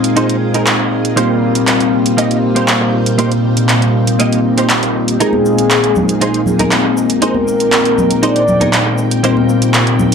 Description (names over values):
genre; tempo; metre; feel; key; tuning
nu-disco, nu disco; 119 BPM; 4/4; straight; unclear; A4 = 440 Hz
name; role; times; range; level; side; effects
mellow synth brass; accompaniment; 0.0-10.1 s; Bb2 to F4; -14 LUFS; left 1 dB; chorus, vintage 12-bit sampler grit
string machine, full ensemble; sustained chords; 0.0-10.1 s; Bb2 to G5; -19 LUFS; right 1 dB; ensemble chorus
house drum kit; drums; 0.0-10.1 s; handclaps, hi-hat; -17 LUFS; right 1 dB; overdrive
direct-recorded clean electric guitar; riff; 0.2-9.8 s; Bb3 to Eb5; -19 LUFS; right 2 dB; ensemble chorus, low-pass filter, dub echo
soft octave-layered synth lead; melody; 5.2-9.0 s; Ab4 to D5; -16 LUFS; left 1 dB; chorus, dub echo
cabasa and congas; percussion; 5.2-10.1 s; none; -20 LUFS; left 1 dB; none
room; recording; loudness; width
moderate plate reverb, RT60 1.3 s, digital ambience; dark, warm production; -10 LUFS; side -6 dB against mid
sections
0.0-10.1 A section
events
none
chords
0.0 Bb7sus4; 1.2 Eb6/Bb; 5.2 Bb7sus4; 9.2 Eb6/Bb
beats
0.16 0.67 | 1.17 1.68 2.18 2.68 | 3.19 3.69 4.20 4.70 | 5.21 5.71 6.21 6.72 | 7.22 7.73 8.23 8.73 | 9.24 9.74